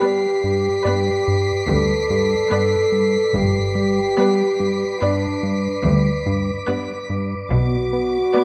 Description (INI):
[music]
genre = cinematic, suspense film score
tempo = 72 BPM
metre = 5/4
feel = straight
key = unclear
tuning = A4 = 441 Hz
[part]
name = rich studio violin section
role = melody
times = 0.0-8.4 s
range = D5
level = -29 LUFS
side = equal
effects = none
[part]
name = warm studio violin section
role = second line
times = 0.0-8.4 s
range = B4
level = -31 LUFS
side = equal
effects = none
[part]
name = rich studio viola section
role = accompaniment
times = 0.0-8.4 s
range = B3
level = -31 LUFS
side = equal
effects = none
[part]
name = mellow French horn section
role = sustained chords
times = 0.0-8.4 s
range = D4 to A4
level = -22 LUFS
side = equal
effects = none
[part]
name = wind-like tuned noise texture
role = sustained chords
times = 0.0-8.4 s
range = B4 to D6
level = -30 LUFS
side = equal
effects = built-in reverb
[part]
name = fat analog bass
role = riff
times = 0.0-8.4 s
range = G2 to B3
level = -25 LUFS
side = equal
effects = none
[part]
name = clear studio violin section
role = texture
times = 0.0-8.4 s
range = D6 to C7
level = -32 LUFS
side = equal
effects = none
[part]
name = rich studio cello section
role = bass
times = 1.7-8.2 s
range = D2 to B2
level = -28 LUFS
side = equal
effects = none
[part]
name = warm studio double bass section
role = bass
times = 1.7-8.2 s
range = G1 to D2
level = -27 LUFS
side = equal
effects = none
[sound]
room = moderate scoring stage reverb, RT60 1.8 s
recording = none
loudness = -19 LUFS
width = mono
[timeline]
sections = 0.0-8.4 A section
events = none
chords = 0.0 G; 7.5 Bm